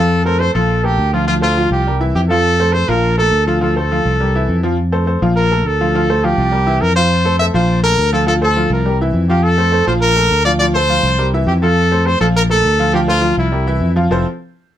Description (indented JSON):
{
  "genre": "latin, salsa",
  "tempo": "206 BPM",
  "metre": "4/4",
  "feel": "straight",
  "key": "F major",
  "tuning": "A4 = 438 Hz",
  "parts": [
    { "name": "clear trumpet", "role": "melody", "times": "0.0-13.9 s", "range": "E4 to E5", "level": "-16 LUFS", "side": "equal", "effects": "none" },
    { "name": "bright upright piano", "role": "accompaniment", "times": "0.0-14.2 s", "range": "E3 to F5", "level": "-18 LUFS", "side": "equal", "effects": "none" },
    { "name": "fingered electric bass", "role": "bass", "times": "0.0-14.2 s", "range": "F1 to F2", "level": "-16 LUFS", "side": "equal", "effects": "none" }
  ],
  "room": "light reverb",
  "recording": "close, detailed microphones",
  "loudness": "-12 LUFS",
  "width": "side -11 dB against mid",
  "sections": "0.0-4.8 A section; 4.8-14.1 A section",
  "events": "none",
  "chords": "0.1 F; 0.7 Bbmaj7; 1.3 Dm7; 1.9 C7; 2.4 F; 3.0 Bbmaj7; 3.6 Dm7; 4.2 C7; 4.8 F; 5.4 Bbmaj7; 5.9 Dm7; 6.5 C7; 7.1 F; 7.7 Bbmaj7; 8.3 Dm7; 8.9 C7; 9.4 F; 10.0 Bbmaj7; 10.6 Dm7; 11.2 C7; 11.8 F; 12.3 Bbmaj7; 12.9 Dm7; 13.5 C7; 14.1 Fmaj7"
}